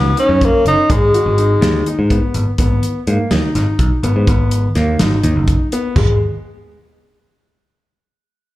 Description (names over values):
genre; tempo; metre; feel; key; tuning
progressive instrumental, band music in an uneven meter; 249 BPM (eighths); 7/8; straight; G# minor; A4 = 437 Hz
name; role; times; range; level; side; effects
warm tenor saxophone; melody; 0.0-2.1 s; G#3 to D#4; -14 LUFS; left 1 dB; slapback echo
clear baby grand piano; arpeggios; 0.0-6.2 s; G#3 to G#4; -20 LUFS; left 1 dB; slapback echo
picked electric bass; bass; 0.0-6.2 s; F#1 to G#2; -15 LUFS; equal; none
natural country drum kit; drums; 0.2-6.1 s; china cymbal, hi-hat, kick drum, snare drum, toms; -18 LUFS; equal; none
room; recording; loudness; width
light reverb, studio ambience; live gig heard through the venue's PA, club reverb; -12 LUFS; side -16 dB against mid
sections
0.0-2.6 A section; 2.6-6.0 B section; 6.0-7.7 C section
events
none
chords
0.0 F#6; 0.9 G#m; 6.0 N.C.